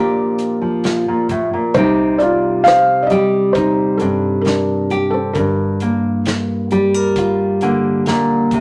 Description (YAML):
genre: acoustic folk-pop ballad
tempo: 66 BPM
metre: 4/4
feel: straight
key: C dorian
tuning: A4 = 440 Hz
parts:
  - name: felt-muted upright piano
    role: melody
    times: 0.0-6.2 s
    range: C4 to F5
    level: -18 LUFS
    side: equal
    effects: none
  - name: nylon-string guitar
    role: accompaniment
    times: 0.0-8.6 s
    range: G2 to Bb4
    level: -18 LUFS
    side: equal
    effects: none
  - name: vintage muted fingered electric bass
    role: bass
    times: 0.0-8.6 s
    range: G1 to C2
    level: -31 LUFS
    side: equal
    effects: none
  - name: natural country drum kit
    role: drums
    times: 0.4-8.6 s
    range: hi-hat, kick drum, snare drum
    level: -27 LUFS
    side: equal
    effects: none
room: wet studio reverb, RT60 0.8 s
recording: none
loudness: -16 LUFS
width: mono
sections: 0.0-1.8 A section; 1.8-8.6 B section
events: none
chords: 0.0 Bb6; 1.8 Cmadd9; 5.4 Gm7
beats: 0.84 | 1.75 2.66 3.56 4.46 | 5.36 6.26 7.17 8.07